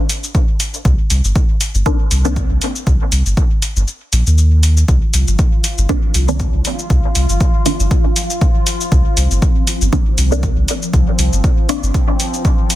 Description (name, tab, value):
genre	dub techno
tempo	119 BPM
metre	4/4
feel	swing 56% on 16ths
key	C minor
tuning	A4 = 437 Hz
part	electronic hi-hat and shaker	drums	0.1-12.8 s	none	-20 LUFS	left 1 dB	none
part	electronic kick drum	drums	0.3-12.6 s	none	-15 LUFS	equal	none
part	warm sub bass	bass	0.9-11.9 s	G1 to Eb2	-14 LUFS	equal	tube saturation, sidechain pumping
part	filtered dub chord stab	stabs	1.9-2.3, 5.9-11.8 s	Eb3 to D4	-22 LUFS	equal	phaser, dub echo
part	bubbling stepped-filter texture	texture	4.9-12.8 s	F3 to F4	-24 LUFS	left 1 dB	chorus, built-in reverb, sidechain pumping
room	digital ambience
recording	dense, heavily limited modern master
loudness	-12 LUFS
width	side -14 dB against mid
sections	0.0-4.9 A section; 4.9-12.8 A section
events	filter sweep on synth stab 0.0-4.9, 4.9-12.8; kick drops out 3.9-4.9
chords	0.0 Cm9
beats	0.35 | 0.85 1.35 1.86 2.36 | 2.87 3.37 3.88 4.38 | 4.88 5.39 5.89 6.40 | 6.90 7.41 7.91 8.41 | 8.92 9.42 9.93 10.43 | 10.94 11.44 11.94 12.45